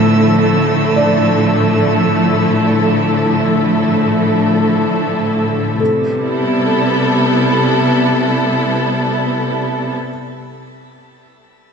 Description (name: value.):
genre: ambient.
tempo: free time.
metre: none.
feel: none.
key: A minor.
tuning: A4 = 440 Hz.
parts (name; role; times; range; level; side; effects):
rich studio string section; sustained chords; 0.0-9.9 s; A2 to A4; -12 LUFS; equal; none.
felt-muted upright piano; arpeggios; 0.0-11.7 s; B3 to D5; -23 LUFS; left 1 dB; diffuse ambient delay, shimmer reverb.
drifting glass-harmonics texture; texture; 0.0-5.8 s; E6; -28 LUFS; right 4 dB; chorus, built-in reverb, shimmer reverb.
room: wet concert hall reverb, RT60 2.2 s.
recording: dark, warm production.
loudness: -12 LUFS.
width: side -6 dB against mid.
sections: 0.0-5.8 A section; 5.8-9.2 B section.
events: none.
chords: 0.0 Dmadd9/A; 5.8 Am9.